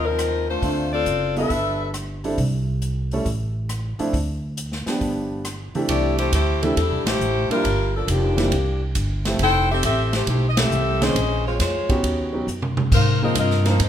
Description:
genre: jazz, big band swing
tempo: 137 BPM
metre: 4/4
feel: swing 68% on 8ths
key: C major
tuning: A4 = 440 Hz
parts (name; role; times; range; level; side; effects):
- clear saxophone section; melody; 0.0-1.9, 5.9-13.9 s; F3 to G5; -22 LUFS; left 2 dB; none
- upright bass; bass; 0.0-13.9 s; F1 to Ab2; -23 LUFS; equal; none
- swinging big-band drum kit; drums; 0.2-13.9 s; crash cymbal, hi-hat, kick drum, ride cymbal, rim click, snare drum, toms; -26 LUFS; equal; none
- warm baby grand piano; accompaniment; 0.6-13.8 s; Eb3 to C5; -25 LUFS; right 2 dB; none
room: moderate large studio reverb, RT60 1.2 s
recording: minimal, uncompressed stereo recording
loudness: -19 LUFS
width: side -10 dB against mid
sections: 0.0-5.9 A section; 5.9-13.9 A section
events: band accent 7.0, 10.5; drum fill 12.5-12.9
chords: 0.0 Ab69 (rootless); 0.6 Dm7; 1.5 G69; 2.4 C6; 3.3 A5; 4.1 Dm; 5.0 G7; 5.9 C69; 7.6 Gm7; 8.5 C7; 9.4 Fmaj9; 11.2 Bbm11; 12.0 Eb7alt; 12.9 Ab69

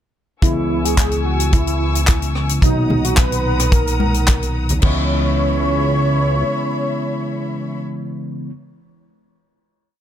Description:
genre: nu-disco, nu disco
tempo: 109 BPM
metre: 4/4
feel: straight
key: C# dorian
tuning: A4 = 445 Hz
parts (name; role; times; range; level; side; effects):
- wide unison lead; melody; 0.4-7.8 s; D#4 to C#5; -23 LUFS; right 1 dB; ping-pong delay
- barky tine electric piano; accompaniment; 0.4-8.5 s; A#2 to E4; -23 LUFS; equal; overdrive, lush chorus, sidechain pumping
- warm chamber string section; sustained chords; 0.4-7.8 s; C#4 to E6; -28 LUFS; left 4 dB; sidechain pumping, low-pass filter
- fat analog bass; bass; 0.4-6.4 s; B1 to C#2; -20 LUFS; equal; tube saturation
- kick drum; drums; 0.4-4.9 s; none; -16 LUFS; equal; none
- tight funk drum kit; drums; 0.4-4.9 s; crash cymbal, handclaps, hi-hat, rim click; -23 LUFS; left 3 dB; none
- congas; percussion; 2.9-4.8 s; none; -24 LUFS; left 2 dB; none
room: small room ambience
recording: none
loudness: -15 LUFS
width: side -10 dB against mid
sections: 0.4-4.8 breakdown; 4.8-7.0 final chord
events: none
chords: 0.4 C#m7; 2.6 Bmaj7; 4.8 C#m7

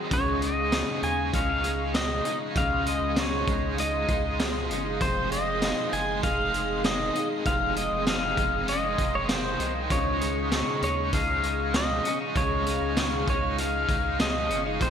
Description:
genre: dream pop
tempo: 98 BPM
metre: 4/4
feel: straight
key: Db major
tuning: A4 = 440 Hz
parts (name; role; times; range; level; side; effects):
- cranked stack guitar; accompaniment; 0.0-14.9 s; F2 to Ab4; -34 LUFS; right 4 dB; overdrive, tremolo, analog chorus
- hollow soft pad; sustained chords; 0.0-14.9 s; Ab4 to F6; -34 LUFS; right 1 dB; ensemble chorus
- electric guitar through a small old amp; arpeggios; 0.0-14.9 s; F2 to Eb4; -32 LUFS; left 5 dB; lush chorus, ping-pong delay
- pedal steel guitar; melody; 0.1-14.9 s; C5 to Ab5; -28 LUFS; equal; ping-pong delay
- round analog bass; bass; 0.1-14.9 s; F1 to Eb2; -33 LUFS; equal; none
- raw garage drum kit; drums; 0.1-14.9 s; hi-hat, kick drum, snare drum, tambourine; -29 LUFS; equal; gated reverb
room: moderate plate reverb, RT60 1.9 s, small room ambience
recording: bright 1980s-style digital production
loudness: -24 LUFS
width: side -8 dB against mid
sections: 0.1-14.9 A section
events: none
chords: 0.1 Dbadd9; 5.0 Fm7; 9.9 Dbadd9

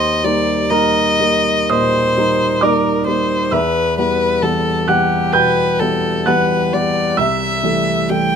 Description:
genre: classical, romantic duo for violin and grand piano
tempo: 65 BPM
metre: 4/4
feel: rubato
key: Eb major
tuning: A4 = 440 Hz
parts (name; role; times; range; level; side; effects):
- warm violin; melody; 0.0-8.4 s; G4 to G5; -17 LUFS; left 2 dB; none
- dark baby grand piano; accompaniment; 0.0-8.4 s; C2 to G6; -16 LUFS; right 1 dB; none
room: light reverb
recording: close, detailed microphones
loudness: -13 LUFS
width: side -7 dB against mid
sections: 0.0-8.4 A section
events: none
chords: 0.0 Eb; 3.5 Em; 7.2 Am7/C

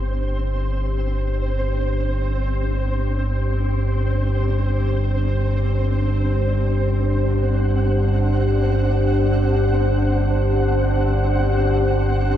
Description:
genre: dark ambient drone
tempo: free time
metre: none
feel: none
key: unclear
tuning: A4 = 441 Hz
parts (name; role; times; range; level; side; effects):
- deep dark ambient pad; sustained chords; 0.0-12.4 s; D4 to C5; -24 LUFS; left 1 dB; chorus, built-in reverb, shimmer reverb
- deep rumbling drone; drone; 0.0-12.4 s; G1 to G2; -20 LUFS; equal; built-in reverb, wide subtle chorus
- flickering grainy texture; texture; 0.0-12.4 s; C4 to F#5; -28 LUFS; equal; built-in reverb, shimmer reverb
room: moderate huge ambient reverb, RT60 7.7 s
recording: none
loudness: -18 LUFS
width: side -11 dB against mid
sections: 0.0-12.4 A section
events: filter sweep on synth drone 0.0-12.4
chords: 0.0 G5

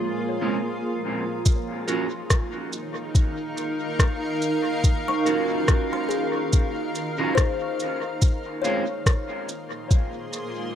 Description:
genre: ambient dub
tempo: 71 BPM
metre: 4/4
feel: swing 55% on 16ths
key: Eb dorian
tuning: A4 = 440 Hz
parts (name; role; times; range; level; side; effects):
- granular cloud pad; sustained chords; 0.0-10.8 s; Bb3 to C6; -28 LUFS; equal; built-in reverb
- kalimba; arpeggios; 0.0-10.6 s; Ab4 to Db6; -31 LUFS; left 6 dB; analog delay
- electric guitar at the edge of break-up; stabs; 0.0-8.8 s; Ab3 to C5; -30 LUFS; right 4 dB; dub echo
- bubbling stepped-filter texture; texture; 0.0-1.5 s; Bb3 to Bb4; -37 LUFS; right 3 dB; chorus, built-in reverb
- electronic kick drum; drums; 1.5-10.1 s; none; -20 LUFS; left 1 dB; none
- electronic shaker and rim click; drums; 1.5-10.5 s; none; -29 LUFS; equal; dub echo
room: light reverb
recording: echo-heavy mix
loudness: -22 LUFS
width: side -10 dB against mid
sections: 0.0-1.5 A section; 1.5-10.8 B section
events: none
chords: 0.0 Bbm9; 1.5 Ebm9; 8.2 Bbm9

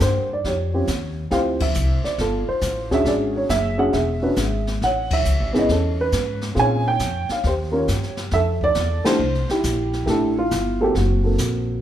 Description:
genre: jazz piano trio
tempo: 137 BPM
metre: 4/4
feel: swing 68% on 8ths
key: unclear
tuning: A4 = 439 Hz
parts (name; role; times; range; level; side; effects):
- dark upright piano; melody; 0.0-11.8 s; A3 to Ab5; -21 LUFS; right 1 dB; none
- upright bass; bass; 0.0-11.8 s; E1 to Bb2; -23 LUFS; left 1 dB; none
- jazz brush drum kit; drums; 0.0-11.8 s; brushed snare drum, hi-hat, kick drum, ride cymbal, snare drum; -28 LUFS; left 2 dB; none
room: moderate large studio reverb, RT60 1.1 s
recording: band playing live in one room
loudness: -18 LUFS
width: side -11 dB against mid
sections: 0.0-11.8 A section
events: band accent 1.5, 5.0, 9.0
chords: 0.4 Eb9; 1.3 Dm11; 3.1 E13; 4.8 Amaj9; 6.6 Bbm7; 7.4 Eb7; 8.3 Fmaj13; 10.9 F#dim

